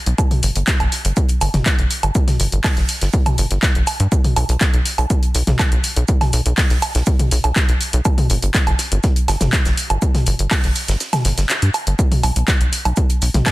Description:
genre	melodic techno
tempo	122 BPM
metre	4/4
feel	straight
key	unclear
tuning	A4 = 440 Hz
part	tight sequencer bass	bass	0.1-13.4 s	G1 to G2	-18 LUFS	equal	sidechain pumping
part	punchy analog drum machine	drums	0.1-13.5 s	handclaps, hi-hat, toms, woodblock	-20 LUFS	equal	none
part	damped 70s drum kit	drums	0.2-13.5 s	hi-hat, shaker, snare drum	-30 LUFS	right 5 dB	high-pass filter on hats, high-pass filter on snare, high-pass filter on perc, high-pass filter on room
part	electronic kick drum	drums	0.2-13.5 s	none	-17 LUFS	equal	none
room	little or no reverb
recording	dense, heavily limited modern master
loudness	-15 LUFS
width	side -18 dB against mid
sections	0.0-13.5 A section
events	kick drops out 11.0-12.0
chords	none

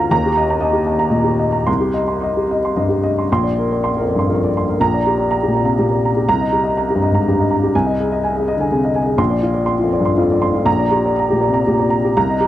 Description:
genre	neoclassical minimalist piano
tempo	108-126 BPM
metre	3/4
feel	rubato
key	C minor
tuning	A4 = 440 Hz
part	dark upright piano	solo	0.0-12.5 s	Bb1 to C6	-14 LUFS	equal	tape echo
room	small room ambience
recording	dry, close 1970s-style studio recording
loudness	-14 LUFS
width	side -13 dB against mid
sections	0.0-3.3 A section; 3.3-12.5 B section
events	none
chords	0.1 Eb; 1.7 Cm; 3.3 Bbadd9; 4.8 Gm/Bb; 6.3 Cm7; 7.7 Ab/C; 9.2 Bbadd9; 10.7 Gm/Bb

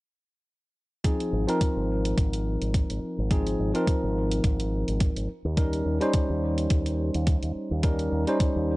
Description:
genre	nu-disco, nu disco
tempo	106 BPM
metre	4/4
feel	swing 56% on 16ths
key	Ab major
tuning	A4 = 444 Hz
part	tine electric piano	accompaniment	1.0-8.8 s	F3 to C5	-27 LUFS	equal	sidechain pumping, low-pass filter, tape echo
part	electronic hi-hat	drums	1.0-8.5 s	none	-38 LUFS	right 1 dB	none
part	electronic kick drum	drums	1.0-8.5 s	none	-24 LUFS	equal	none
part	fingered electric bass with an envelope filter	bass	1.3-8.8 s	Ab1 to Eb2	-28 LUFS	equal	none
room	light reverb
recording	dry, gritty hardware recording, transformer saturation, nothing above 10.8 kHz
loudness	-24 LUFS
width	side -20 dB against mid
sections	1.0-8.8 A section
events	none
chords	1.0 Ab6; 5.3 Eb7

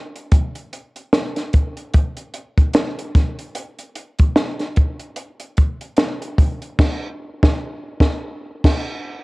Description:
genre	soul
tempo	74 BPM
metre	4/4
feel	swing 58% on 16ths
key	none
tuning	none
part	compact cocktail drum kit	drums	0.2-8.9 s	crash cymbal, hi-hat, kick drum, snare drum	-16 LUFS	equal	cassette tape
room	light reverb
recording	home recording on cassette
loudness	-17 LUFS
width	side -24 dB against mid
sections	0.0-9.2 A section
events	band accent 6.8-9.2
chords	none

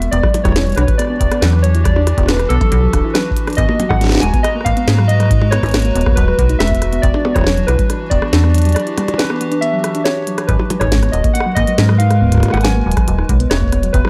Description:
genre	IDM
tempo	139 BPM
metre	4/4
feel	straight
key	unclear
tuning	A4 = 441 Hz
part	warbly lo-fi synth keys	melody	0.0-14.1 s	A4 to G#5	-22 LUFS	equal	chorus, delay
part	warbly tape-like pad	sustained chords	0.0-14.1 s	E3 to A#5	-27 LUFS	equal	chorus, built-in reverb
part	metallic FM bass	bass	0.0-14.0 s	D1 to G#2	-17 LUFS	equal	none
part	glitchy drum kit	drums	0.0-14.1 s	hi-hat, percussion blips, rim click, snare drum	-23 LUFS	equal	none
part	soft round pluck	arpeggios	0.1-14.1 s	F#3 to G4	-24 LUFS	equal	chorus, delay
part	electronic kick drum	drums	0.2-14.0 s	none	-20 LUFS	equal	overdrive
room	digital ambience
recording	none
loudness	-14 LUFS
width	mono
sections	0.0-14.1 A section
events	break 8.8-10.5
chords	0.0 Em9; 3.6 G#m9; 6.8 Em9; 10.5 G#m9

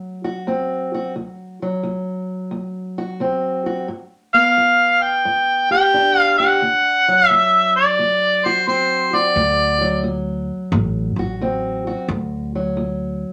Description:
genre	acoustic country blues, solo or duo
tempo	88 BPM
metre	4/4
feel	swing 66% on 8ths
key	D mixolydian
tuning	A4 = 440 Hz
part	fingerpicked steel-string acoustic guitar	accompaniment	0.0-13.3 s	D2 to G4	-26 LUFS	equal	none
part	mellow harmonica	melody	4.3-10.1 s	C5 to G5	-16 LUFS	equal	none
part	upright bass	bass	9.4-13.2 s	A1 to D2	-25 LUFS	equal	none
room	wet studio reverb, RT60 0.5 s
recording	none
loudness	-18 LUFS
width	mono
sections	0.0-13.3 A section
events	none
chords	0.0 D7; 3.9 G7; 6.6 D7

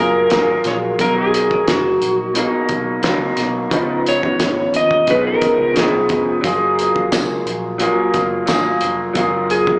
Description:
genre	indie pop, bedroom pop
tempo	88 BPM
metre	4/4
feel	straight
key	F# major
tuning	A4 = 443 Hz
part	clean lap steel guitar	melody	0.0-9.8 s	F#4 to D#5	-20 LUFS	equal	analog chorus, slapback echo, tape echo
part	dark upright piano	accompaniment	0.0-9.8 s	E#3 to B4	-27 LUFS	equal	slapback echo
part	electric guitar through a small old amp	accompaniment	0.0-9.8 s	B2 to G#4	-21 LUFS	equal	lush chorus, warbly pitch drift
part	vintage muted picked electric bass	bass	0.0-9.7 s	E#1 to D#2	-33 LUFS	equal	none
part	cloth-damped thuddy drum kit	drums	0.3-9.8 s	hi-hat, kick drum, snare drum	-24 LUFS	equal	none
part	tambourine	percussion	7.1-8.6 s	none	-35 LUFS	equal	none
room	light reverb, small room ambience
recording	live gig heard through the venue's PA, club ambience, small speaker sound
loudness	-17 LUFS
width	mono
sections	0.0-9.8 A section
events	electric slide guitar solo 0.0-9.8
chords	0.0 F#maj9; 1.0 Bmaj7; 3.7 C#9; 6.4 F#maj9

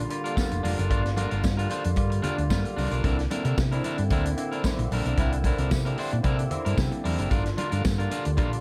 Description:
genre	disco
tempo	112 BPM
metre	4/4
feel	straight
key	G dorian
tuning	A4 = 441 Hz
part	barky tine electric piano	accompaniment	0.0-8.6 s	D3 to D5	-34 LUFS	equal	overdrive, phaser
part	hollow-body short-scale fingered electric bass	bass	0.0-8.6 s	F1 to C3	-29 LUFS	equal	none
part	electric guitar at the edge of break-up	accompaniment	0.1-8.6 s	D4 to C5	-35 LUFS	equal	none
part	vintage drum kit	drums	0.1-8.6 s	hi-hat, kick drum, snare drum	-31 LUFS	equal	none
part	congas	percussion	0.4-8.5 s	none	-38 LUFS	equal	none
part	tambourine	percussion	0.4-8.0 s	none	-45 LUFS	equal	none
room	studio reverb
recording	none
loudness	-26 LUFS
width	mono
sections	0.0-8.6 A section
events	none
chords	0.0 Gm7; 3.0 C9; 7.3 Gm7

